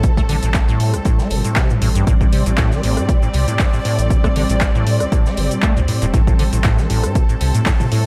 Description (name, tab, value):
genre	acid house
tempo	118 BPM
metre	4/4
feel	swing 54% on 16ths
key	A minor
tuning	A4 = 441 Hz
part	clear studio string section	sustained chords	0.0-8.1 s	G3 to D5	-26 LUFS	equal	sidechain pumping
part	acid bass, square	riff	0.0-8.1 s	A1 to A3	-23 LUFS	equal	subtle chorus, tape echo
part	saturated sub bass	bass	0.0-7.6 s	E1 to A2	-22 LUFS	equal	tube saturation, sidechain pumping
part	deep reggae drum kit	drums	0.0-8.0 s	hi-hat, snare drum	-40 LUFS	equal	none
part	electronic kick drum	drums	0.0-7.8 s	none	-18 LUFS	equal	overdrive
part	punchy analog drum machine	drums	0.0-8.0 s	handclaps, hi-hat, rim click, shaker, toms	-27 LUFS	equal	overdrive
room	light reverb, small room ambience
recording	none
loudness	-16 LUFS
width	mono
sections	0.0-8.1 A section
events	none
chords	0.0 Am7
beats	| 0.04 0.55 1.05 1.56 | 2.07 2.58 3.09 3.60 | 4.10 4.61 5.12 5.63 | 6.14 6.65 7.16 7.66